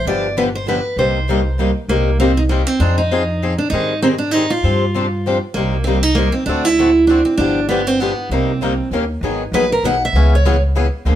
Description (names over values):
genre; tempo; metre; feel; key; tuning
acoustic string swing (jazz manouche); 196 BPM; 3/4; swing 59% on 8ths; C minor; A4 = 439 Hz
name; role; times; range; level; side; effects
picked steel-string acoustic guitar; melody; 0.0-10.6 s; Bb3 to F#5; -17 LUFS; right 2 dB; none
picked steel-string acoustic guitar; accompaniment; 0.1-1.7, 5.6-11.2 s; C3 to Bb4; -26 LUFS; right 4 dB; none
picked swing-style acoustic guitar; accompaniment; 0.1-11.2 s; C3 to Bb4; -21 LUFS; left 5 dB; none
upright bass; bass; 0.1-11.2 s; G1 to Ab2; -19 LUFS; equal; none
room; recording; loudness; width
moderate studio reverb, RT60 0.7 s; band playing live in one room; -14 LUFS; side -11 dB against mid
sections
0.0-1.9 A section; 1.9-9.2 A section; 9.2-11.2 B section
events
none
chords
0.1 G7; 1.0 Cm7; 2.8 Fm7; 3.7 Abmaj7; 4.6 G7sus4; 5.6 Cm7; 6.5 D7; 7.4 G7; 8.3 Cm7; 8.9 Eb7; 9.2 G#m9; 10.1 C#m7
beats
| 0.06 0.36 0.67 | 0.98 1.28 1.59 | 1.89 2.20 2.50 | 2.81 3.11 3.42 | 3.72 4.03 4.33 | 4.64 4.95 5.25 | 5.56 5.86 6.17 | 6.47 6.78 7.08 | 7.39 7.69 8.00 | 8.30 8.61 8.91 | 9.22 9.52 9.83 | 10.13 10.44 10.74 | 11.05